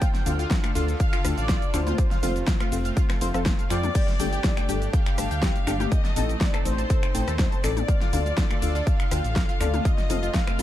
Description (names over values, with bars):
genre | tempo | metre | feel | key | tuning
progressive house | 122 BPM | 4/4 | straight | unclear | A4 = 440 Hz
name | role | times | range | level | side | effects
warm velvety synth lead | melody | 0.0-10.6 s | C5 to C6 | -34 LUFS | equal | chorus, tape echo
rich chamber violin section | second line | 0.0-10.6 s | C5 to C6 | -38 LUFS | left 3 dB | sidechain pumping, tape echo
supersaw pad | sustained chords | 0.0-10.6 s | D3 to A4 | -36 LUFS | right 1 dB | sidechain pumping
analog pluck | arpeggios | 0.0-10.6 s | F4 to A5 | -35 LUFS | equal | analog chorus, sidechain pumping, tape echo
electronic kick drum | drums | 0.0-10.4 s | none | -24 LUFS | equal | overdrive
pop drum kit | drums | 0.0-10.6 s | cabasa, crash cymbal, finger snaps, hi-hat, snare drum | -31 LUFS | equal | overdrive, sidechain pumping on hats, sidechain pumping on perc, sidechain pumping on cymbals
deep mellow chord stab | stabs | 0.3-10.6 s | A2 to A5 | -32 LUFS | left 3 dB | chorus, sidechain pumping, tape echo
dark detuned saw bass | bass | 0.3-10.6 s | F1 to F2 | -27 LUFS | equal | sidechain pumping
deep house drum kit | percussion | 0.3-10.6 s | congas, rim click, toms | -34 LUFS | left 7 dB | overdrive, sidechain pumping on toms, sidechain pumping on snare, sidechain pumping on perc
room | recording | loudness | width
little or no reverb | dark, warm production | -21 LUFS | side -13 dB against mid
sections
0.0-10.6 A section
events
none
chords
0.0 Dm; 2.0 F; 4.0 Gsus2; 5.9 Adim; 7.9 Dm; 9.9 F